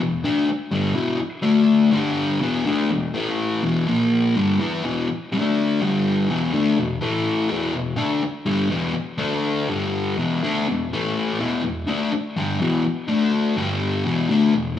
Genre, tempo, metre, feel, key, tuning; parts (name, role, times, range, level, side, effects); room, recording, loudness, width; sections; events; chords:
rock; 124 BPM; 4/4; straight; E minor; A4 = 440 Hz
fuzz guitar; solo; 0.0-14.7 s; E2 to E4; -19 LUFS; left 2 dB; distortion, cassette tape, tape echo
wet studio reverb, RT60 0.6 s; home recording on cassette, small room ambience; -19 LUFS; side -10 dB against mid
0.0-4.8 A section; 4.8-14.8 B section
0.0 Em; 1.5 D5; 1.9 G5; 2.4 E5; 3.1 A5; 3.6 E5; 3.9 A#5; 4.3 Em; 4.8 E5; 5.3 D5; 5.8 G5; 6.3 E5; 7.0 A5; 7.5 Em; 9.2 D5; 9.7 G5; 10.2 E5; 10.9 A5; 11.4 Em; 13.1 D5; 13.6 G5; 14.1 E5